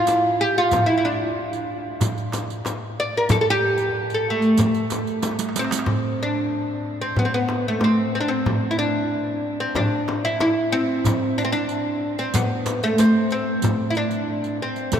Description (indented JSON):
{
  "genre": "Arabic maqam ensemble",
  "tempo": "93 BPM",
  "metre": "4/4",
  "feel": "straight",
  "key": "unclear",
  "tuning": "A4 = 440 Hz",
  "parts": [
    { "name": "oud", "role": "melody", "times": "0.0-15.0 s", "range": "A3 to D5", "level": "-20 LUFS", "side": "equal", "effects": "none" },
    { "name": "darbuka", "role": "percussion", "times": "0.1-15.0 s", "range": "none", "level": "-29 LUFS", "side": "right 1 dB", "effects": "none" },
    { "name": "frame drum", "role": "percussion", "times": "0.1-15.0 s", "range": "none", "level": "-29 LUFS", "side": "left 3 dB", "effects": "none" },
    { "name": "riq", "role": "percussion", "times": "0.1-5.9, 11.1-15.0 s", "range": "none", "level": "-33 LUFS", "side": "right 9 dB", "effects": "none" }
  ],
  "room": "wet cathedral reverb, RT60 5.9 s",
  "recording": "in a vast, echoing space",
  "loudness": "-19 LUFS",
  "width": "side -8 dB against mid",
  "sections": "0.0-5.9 A section; 5.9-15.0 B section",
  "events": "drum fill 5.2-5.9",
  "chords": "none"
}